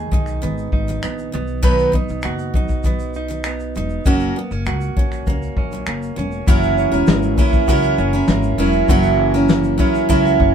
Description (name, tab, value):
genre	acoustic pop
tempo	99 BPM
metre	4/4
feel	straight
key	unclear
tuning	A4 = 443 Hz
part	direct-recorded clean electric guitar	arpeggios	0.0-10.5 s	D#3 to G#4	-26 LUFS	right 3 dB	none
part	upright bass	bass	0.0-10.5 s	E1 to C#2	-22 LUFS	left 1 dB	none
part	picked steel-string acoustic guitar	accompaniment	0.1-10.5 s	B2 to B4	-18 LUFS	right 2 dB	none
part	soft brush drum kit	drums	0.1-10.5 s	finger snaps, kick drum, shaker, snare drum	-18 LUFS	left 1 dB	none
room	light reverb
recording	band playing live in one room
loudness	-15 LUFS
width	side -8 dB against mid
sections	0.0-6.5 A section; 6.5-10.5 B section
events	none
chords	0.0 G#m/B; 1.3 B; 4.1 F#; 6.5 F#7